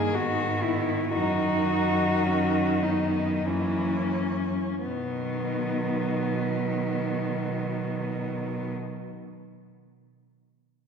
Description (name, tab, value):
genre	classical, lyrical piece for cello ensemble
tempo	41-64 BPM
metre	3/4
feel	rubato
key	B major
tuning	A4 = 440 Hz
part	warm cello	melody	0.0-8.7 s	B3 to G#4	-30 LUFS	left 4 dB	none
part	rich cello	second line	0.0-8.7 s	F#3 to D#4	-33 LUFS	right 5 dB	none
part	rich cello	accompaniment	0.0-8.7 s	D#3 to E3	-30 LUFS	right 1 dB	none
part	rich cello	bass	0.0-8.7 s	F#2 to B2	-30 LUFS	equal	none
room	wet concert hall reverb, RT60 2.3 s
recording	recorded in a church or concert hall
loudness	-24 LUFS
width	side -6 dB against mid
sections	0.0-4.9 A section; 4.9-9.1 B section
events	slowing down 0.0-4.9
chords	0.1 G#m; 1.1 B/F#; 3.5 F#7; 4.9 B